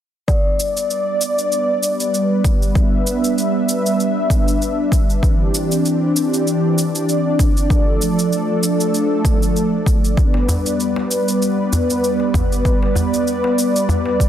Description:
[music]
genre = organic downtempo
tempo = 97 BPM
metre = 4/4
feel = swing 56% on 16ths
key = G mixolydian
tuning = A4 = 440 Hz
[part]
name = warm analog pad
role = sustained chords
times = 0.3-14.3 s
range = E3 to E5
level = -17 LUFS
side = equal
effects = chorus, sidechain pumping
[part]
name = cabasa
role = drums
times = 0.3-14.3 s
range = none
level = -25 LUFS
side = right 1 dB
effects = overdrive
[part]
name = electronic kick drum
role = drums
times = 0.3-14.3 s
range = none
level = -16 LUFS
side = equal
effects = overdrive
[part]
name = quartz singing bowl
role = texture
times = 0.3-14.3 s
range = D5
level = -26 LUFS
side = left 2 dB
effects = none
[part]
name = darbuka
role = percussion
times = 10.3-14.3 s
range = none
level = -22 LUFS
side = equal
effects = none
[sound]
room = moderate concert hall reverb, RT60 2.2 s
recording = dense, heavily limited modern master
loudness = -15 LUFS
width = side -10 dB against mid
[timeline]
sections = 0.3-14.3 A section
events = none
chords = 0.3 G; 5.2 Cadd9; 7.7 Dm; 10.2 G

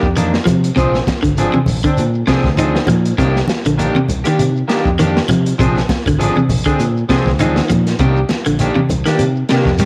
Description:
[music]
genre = afrobeat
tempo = 100 BPM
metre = 4/4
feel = swing 55% on 16ths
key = C minor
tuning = A4 = 440 Hz
[part]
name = electric guitar at the edge of break-up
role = stabs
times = 0.0-9.9 s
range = Eb3 to Ab4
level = -21 LUFS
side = equal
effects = analog chorus, cassette tape
[part]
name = fingered electric bass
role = bass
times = 0.0-9.9 s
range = Ab1 to C3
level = -21 LUFS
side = equal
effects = transformer saturation
[part]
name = crunchy breakbeat drum kit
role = drums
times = 0.0-9.9 s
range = hi-hat, kick drum, snare drum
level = -23 LUFS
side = equal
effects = none
[part]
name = shekere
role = percussion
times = 0.0-9.9 s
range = none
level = -28 LUFS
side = equal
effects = none
[part]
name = electric guitar at the edge of break-up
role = arpeggios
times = 0.2-9.9 s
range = C3 to Eb4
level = -20 LUFS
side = equal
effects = cassette tape
[part]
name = congas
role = percussion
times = 0.2-9.9 s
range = none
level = -24 LUFS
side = equal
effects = none
[sound]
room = moderate spring reverb, RT60 1.3 s, small room ambience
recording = home recording on cassette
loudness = -15 LUFS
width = mono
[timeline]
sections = 0.0-9.9 A section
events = none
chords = 0.0 Cm9; 0.8 Bb9; 3.2 Cm9; 5.6 Bb9; 8.0 Cm9

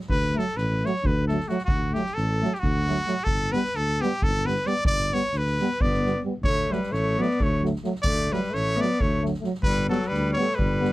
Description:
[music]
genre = balkan folk, Balkan brass band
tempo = 264 BPM (eighths)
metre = 7/8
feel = straight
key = D major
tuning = A4 = 440 Hz
[part]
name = soft-mallet drum kit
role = percussion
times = 0.0-10.9 s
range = kick drum, snare drum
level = -29 LUFS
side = equal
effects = none
[part]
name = brilliant trumpet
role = melody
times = 0.1-10.9 s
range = F#4 to D5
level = -27 LUFS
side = equal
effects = none
[part]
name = dark tuba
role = bass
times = 0.1-10.9 s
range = G1 to D2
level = -27 LUFS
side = equal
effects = none
[part]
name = mellow trombone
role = accompaniment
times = 0.3-10.9 s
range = A3 to B3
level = -30 LUFS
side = left 4 dB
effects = none
[part]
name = mellow euphonium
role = accompaniment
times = 0.4-10.9 s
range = F#3 to G3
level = -29 LUFS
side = right 5 dB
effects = none
[part]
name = clear alto saxophone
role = second line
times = 5.8-10.9 s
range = F#3 to B3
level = -28 LUFS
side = left 2 dB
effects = none
[sound]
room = light reverb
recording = dark, warm production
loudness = -22 LUFS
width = side -18 dB against mid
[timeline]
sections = 0.1-10.9 A section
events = none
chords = 0.1 D; 3.3 G; 6.4 D; 9.6 G

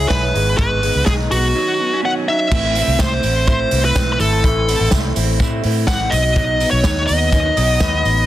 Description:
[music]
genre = jangly indie pop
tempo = 125 BPM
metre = 4/4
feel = straight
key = unclear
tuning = A4 = 441 Hz
[part]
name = smooth overdriven lead guitar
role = melody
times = 0.0-8.3 s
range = F#4 to F#5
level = -18 LUFS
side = equal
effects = none
[part]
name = electric guitar through a small old amp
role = accompaniment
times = 0.0-8.3 s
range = G#2 to E4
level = -25 LUFS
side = right 4 dB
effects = phaser
[part]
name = electric guitar through a small old amp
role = arpeggios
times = 0.0-8.3 s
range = E3 to G#4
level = -26 LUFS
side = left 4 dB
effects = wide subtle chorus
[part]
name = vintage muted fingered electric bass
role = bass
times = 0.0-8.3 s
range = G#1 to A2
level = -19 LUFS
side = equal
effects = none
[part]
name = vintage drum kit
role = drums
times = 0.1-8.2 s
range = crash cymbal, hi-hat, kick drum, snare drum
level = -20 LUFS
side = equal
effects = none
[part]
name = tambourine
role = percussion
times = 2.5-8.2 s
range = none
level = -34 LUFS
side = right 7 dB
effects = none
[part]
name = glockenspiel with soft plastic mallets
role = second line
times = 7.6-8.3 s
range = B5 to D#6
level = -27 LUFS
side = left 2 dB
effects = none
[sound]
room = light reverb, small room ambience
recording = dense, heavily limited modern master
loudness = -14 LUFS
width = side -14 dB against mid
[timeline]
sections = 0.0-2.5 A section; 2.5-8.3 B section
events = none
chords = 0.3 G#m; 1.6 Badd9; 2.5 Am; 6.1 B

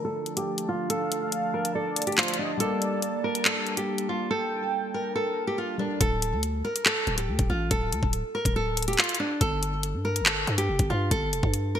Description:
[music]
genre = hip hop, drill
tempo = 141 BPM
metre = 4/4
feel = half-time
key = D minor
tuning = A4 = 442 Hz
[part]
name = nylon-string guitar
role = melody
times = 0.0-11.8 s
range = D4 to Bb4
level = -29 LUFS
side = right 1 dB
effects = low-pass filter, digital delay
[part]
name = dark concert grand piano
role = accompaniment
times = 0.0-6.0 s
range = D3 to Bb4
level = -37 LUFS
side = left 2 dB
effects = analog chorus, low-pass filter
[part]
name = warm analog pad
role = sustained chords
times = 0.0-6.0 s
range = F3 to A5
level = -34 LUFS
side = equal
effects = chorus, low-pass filter
[part]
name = drill drum kit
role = drums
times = 0.3-11.6 s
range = handclaps, hi-hat, kick drum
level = -25 LUFS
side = equal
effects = overdrive, gated reverb
[part]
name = warm velvety synth lead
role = second line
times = 0.9-5.6 s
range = Bb4 to G5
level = -33 LUFS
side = right 3 dB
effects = chorus, digital delay
[part]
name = growling 808-style bass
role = bass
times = 6.0-11.8 s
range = D1 to G2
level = -29 LUFS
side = equal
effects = none
[sound]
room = moderate lush hall reverb, RT60 1.9 s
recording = bright 1980s-style digital production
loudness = -24 LUFS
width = side -9 dB against mid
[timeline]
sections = 0.0-6.0 A section; 6.0-11.8 B section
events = filter sweep 0.0-6.0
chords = 0.0 Dm; 2.6 Gmadd9; 6.0 D5; 9.4 Gsus2

